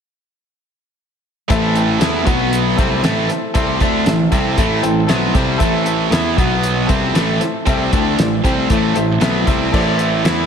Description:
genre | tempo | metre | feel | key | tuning
classic rock | 116 BPM | 4/4 | straight | A minor | A4 = 439 Hz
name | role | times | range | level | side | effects
clear upright piano | accompaniment | 1.5-10.5 s | F#4 to G5 | -24 LUFS | left 3 dB | slapback echo
string machine, cellos | sustained chords | 1.5-10.5 s | F#3 to B4 | -26 LUFS | right 1 dB | none
overdriven electric guitar | riff | 1.5-10.5 s | A2 to E4 | -20 LUFS | left 9 dB | none
tight distorted guitar | riff | 1.5-10.5 s | A2 to E4 | -19 LUFS | right 10 dB | distortion
fuzz picked electric bass | bass | 1.5-10.5 s | A1 to E2 | -22 LUFS | equal | overdrive
cloth-damped thuddy drum kit | drums | 1.5-10.4 s | crash cymbal, hi-hat, kick drum, snare drum | -19 LUFS | equal | none
room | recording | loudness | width
moderate scoring stage reverb, RT60 1.9 s | big arena sound | -13 LUFS | side -7 dB against mid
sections
1.5-10.5 A section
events
none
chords
1.5 Am; 2.3 B5; 2.8 Am; 6.4 B5; 6.9 Am

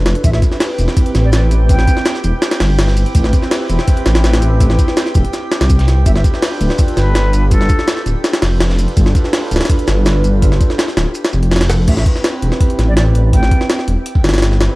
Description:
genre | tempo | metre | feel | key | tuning
drum and bass, jungle | 165 BPM | 4/4 | straight | A minor | A4 = 440 Hz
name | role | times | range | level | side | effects
dark detuned saw bass | bass | 0.0-14.7 s | D1 to C2 | -13 LUFS | equal | tube saturation
jungle sampler-style drum kit | drums | 0.1-14.7 s | crash cymbal, hi-hat, kick drum, snare drum | -14 LUFS | equal | studio reverb
bright concert flute | melody | 0.2-2.2, 6.1-8.0, 11.9-13.8 s | A4 to G5 | -25 LUFS | equal | dub echo
crunchy breakbeat drum kit | drums | 0.2-11.8 s | hi-hat, shaker, snare drum | -31 LUFS | right 2 dB | high-pass filter on hats, studio reverb, high-pass filter on snare, high-pass filter on perc, high-pass filter on room
drifting glass-harmonics texture | texture | 0.7-11.9 s | G4 to G5 | -29 LUFS | right 2 dB | chorus, built-in reverb
room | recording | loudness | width
studio reverb | dry, gritty hardware recording, vinyl crackle | -11 LUFS | side -20 dB against mid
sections
0.0-11.9 A section; 11.9-14.8 A section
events
drop 0.0-11.9, 11.9-14.8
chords
0.2 Am7; 6.1 G7; 11.9 Am7

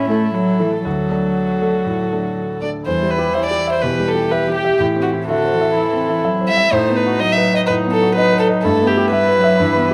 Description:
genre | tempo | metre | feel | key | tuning
quick classical-period movement for piano quartet | 124 BPM | 4/4 | straight | E minor | A4 = 441 Hz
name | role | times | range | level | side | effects
warm violin | melody | 0.0-9.9 s | E4 to E5 | -21 LUFS | equal | none
warm cello | second line | 0.0-9.9 s | D3 to A3 | -24 LUFS | equal | none
clear concert grand piano | accompaniment | 0.0-9.9 s | D2 to E5 | -22 LUFS | equal | none
warm viola | accompaniment | 0.0-9.9 s | D#4 to A4 | -25 LUFS | equal | none
room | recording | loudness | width
moderate recital hall reverb, RT60 1.4 s | close, detailed microphones | -17 LUFS | mono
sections
0.0-2.9 A section; 2.9-9.9 B section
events
none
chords
0.0 A5; 0.9 D; 2.9 Em; 4.8 Am; 6.7 B7/A; 8.6 Em/G

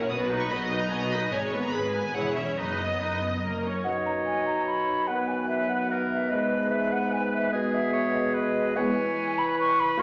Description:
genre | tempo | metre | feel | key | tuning
quick classical-period movement for symphony orchestra | 147 BPM | 3/4 | straight | B major | A4 = 440 Hz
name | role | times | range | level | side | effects
rich studio violin section | second line | 0.0-3.6 s | B4 to D#5 | -34 LUFS | equal | none
rich studio viola section | accompaniment | 0.0-3.9 s | G#3 to D#5 | -33 LUFS | equal | none
rich symphonic double bass section | bass | 0.0-3.8 s | E1 to B1 | -38 LUFS | equal | none
warm studio cello section | bass | 0.0-3.8 s | E2 to B2 | -40 LUFS | equal | none
clear studio violin section | melody | 0.1-3.4 s | D#5 to D#6 | -38 LUFS | equal | none
bright clarinet | second line | 3.8-10.0 s | G#4 to D#5 | -34 LUFS | equal | none
mellow hollow silver concert flute | second line | 3.8-10.0 s | D#5 to C#6 | -30 LUFS | equal | none
dark bassoon | accompaniment | 3.8-10.0 s | G#2 to E3 | -35 LUFS | equal | none
mellow French horn section | sustained chords | 3.8-10.0 s | F#3 to D#4 | -32 LUFS | equal | none
bright oboe | second line | 3.9-10.0 s | G#4 to C#5 | -35 LUFS | equal | none
room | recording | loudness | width
wet recital hall reverb, RT60 1.5 s | vinyl crackle, nothing above 7.5 kHz, faint mains hum | -27 LUFS | mono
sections
0.0-3.9 A section; 3.9-10.0 B section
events
none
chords
0.1 B; 1.3 G#m; 2.1 C#m/E; 2.6 B/F#; 3.4 F#; 3.9 B; 5.1 B/D#; 6.3 G#m; 7.5 G#m/B; 8.8 C#m7/E

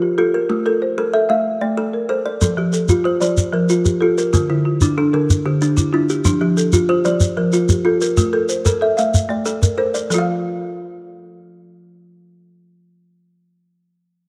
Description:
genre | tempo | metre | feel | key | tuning
southern african traditional, mbira-style interlocking cycle | 125 BPM (dotted quarters) | 12/8 | straight | unclear | A4 = 440 Hz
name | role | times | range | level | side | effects
folk marimba with medium mallets | arpeggios | 0.0-13.3 s | D3 to F5 | -22 LUFS | equal | none
kalimba | arpeggios | 0.0-13.3 s | D3 to F5 | -21 LUFS | equal | none
shekere | percussion | 2.4-10.3 s | none | -20 LUFS | equal | none
room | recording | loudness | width
moderate plate reverb, RT60 2.4 s | none | -17 LUFS | mono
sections
0.0-10.1 A section; 10.1-13.9 B section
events
none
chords
0.5 Am; 2.4 F; 4.3 Dm; 6.2 F; 8.2 Am; 10.1 N.C.

